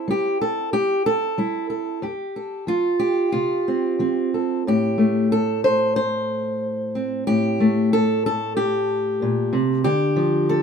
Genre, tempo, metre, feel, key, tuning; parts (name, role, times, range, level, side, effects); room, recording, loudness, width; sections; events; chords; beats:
folk, solo fingerstyle acoustic guitar; 92 BPM; 4/4; straight; A4 = 442 Hz
fingerpicked steel-string acoustic guitar; solo; 0.0-10.6 s; F2 to C5; -19 LUFS; equal
moderate small room reverb, RT60 0.6 s; minimal, uncompressed stereo recording; -19 LUFS; side -6 dB against mid
0.0-4.7 A section; 4.7-10.6 B section
0.0 C6; 2.0 Fadd9; 4.7 Am7; 9.8 Dm
0.07 0.73 1.38 | 2.03 2.68 3.33 4.00 | 4.66 5.31 5.96 6.61 | 7.26 7.91 8.56 9.20 | 9.85 10.49